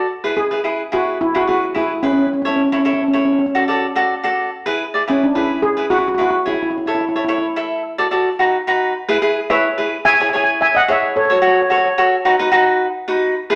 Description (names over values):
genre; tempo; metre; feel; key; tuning
calypso; 108 BPM; 4/4; straight; E mixolydian, E major from 8.9 s; A4 = 440 Hz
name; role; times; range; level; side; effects
cavaquinho; accompaniment; 0.0-13.6 s; D#4 to E5; -20 LUFS; equal; none
steel pan; melody; 0.4-11.9 s; C#4 to G#5; -19 LUFS; equal; none
room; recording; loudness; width
wet large studio reverb, RT60 1.1 s; none; -17 LUFS; mono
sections
0.0-8.9 A section; 8.9-13.6 B section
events
none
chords
0.1 E; 2.3 A; 3.4 D; 4.5 E; 6.7 A; 7.8 D; 8.4 B; 8.9 E; 10.1 C#m; 11.2 F#m; 12.3 B